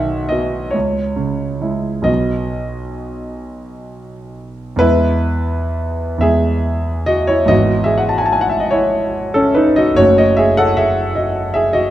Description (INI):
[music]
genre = classical, romantic nocturne for solo piano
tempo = 40-52 BPM (dotted quarters)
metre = 12/8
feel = rubato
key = E major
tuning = A4 = 440 Hz
[part]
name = clear concert grand piano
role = solo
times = 0.0-11.9 s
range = F#1 to A5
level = -14 LUFS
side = equal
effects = none
[sound]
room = wet recital hall reverb, RT60 1.4 s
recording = dark, warm production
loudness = -13 LUFS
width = side -13 dB against mid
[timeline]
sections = 0.0-4.8 A section; 4.8-11.9 B section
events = none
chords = 0.0 B; 0.7 C#m; 2.1 B; 4.8 E; 7.5 E/G#; 10.0 F#m